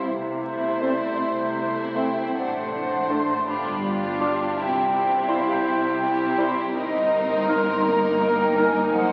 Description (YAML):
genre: classical, slow romantic movement for symphony orchestra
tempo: 54 BPM (dotted quarters)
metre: 6/8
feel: uneven beats, rubato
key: C major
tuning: A4 = 442 Hz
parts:
  - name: warm chamber violin section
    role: melody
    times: 0.0-9.1 s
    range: G4 to C5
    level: -34 LUFS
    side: equal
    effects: none
  - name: hollow flute section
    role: second line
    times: 0.0-9.1 s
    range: D5 to C6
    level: -29 LUFS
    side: equal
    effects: none
  - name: rich chamber violin section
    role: second line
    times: 0.0-9.1 s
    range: D4 to F4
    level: -34 LUFS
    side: equal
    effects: none
  - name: rich chamber viola section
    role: accompaniment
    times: 0.0-9.1 s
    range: A3 to D4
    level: -34 LUFS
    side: equal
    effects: none
  - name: mellow French horn section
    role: sustained chords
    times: 0.0-9.1 s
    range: G3 to F4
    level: -33 LUFS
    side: equal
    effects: none
  - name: dark trumpet section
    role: stabs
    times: 0.0-9.1 s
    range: Bb4 to D5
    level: -32 LUFS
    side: equal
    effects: none
  - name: warm chamber cello section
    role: bass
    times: 0.0-9.1 s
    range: Gb2 to C3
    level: -34 LUFS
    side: equal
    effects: none
  - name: warm studio double bass section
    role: bass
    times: 0.1-9.1 s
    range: Gb1 to C2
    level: -41 LUFS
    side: equal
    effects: none
  - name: dark clarinet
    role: second line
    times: 0.8-8.7 s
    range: C4 to F4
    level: -34 LUFS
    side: equal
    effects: none
  - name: mellow oboe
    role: second line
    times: 0.8-8.7 s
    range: Bb4 to D5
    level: -35 LUFS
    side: equal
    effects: none
  - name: dark bassoon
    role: accompaniment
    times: 0.8-8.7 s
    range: G3 to Bb3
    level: -36 LUFS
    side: equal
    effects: none
room: wet concert hall reverb, RT60 2.4 s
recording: very old 78 rpm record, vinyl crackle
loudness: -23 LUFS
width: mono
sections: 0.0-9.1 A section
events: none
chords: 0.1 Am/C; 2.3 D7/A; 3.5 G7; 4.6 C; 6.7 Eb/G